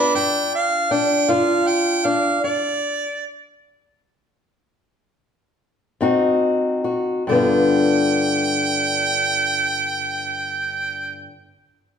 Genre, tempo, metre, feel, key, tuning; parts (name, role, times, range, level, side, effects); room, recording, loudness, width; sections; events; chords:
acoustic country blues, solo or duo; 46-53 BPM (dotted quarters); 12/8; straight; G mixolydian; A4 = 436 Hz
clear harmonica; melody; 0.0-11.2 s; D5 to B5; -21 LUFS; right 3 dB
fingerpicked old ladder-braced acoustic guitar; accompaniment; 0.0-11.3 s; G2 to Gb4; -19 LUFS; left 2 dB
wet large studio reverb, RT60 1.3 s; band playing live in one room; -17 LUFS; side -7 dB against mid
0.0-7.3 A section; 7.3-12.0 B section
slowing down 0.9-7.3; stop 2.4-6.0
0.0 G7(no3); 2.4 N.C.; 6.0 Ab7; 7.3 G7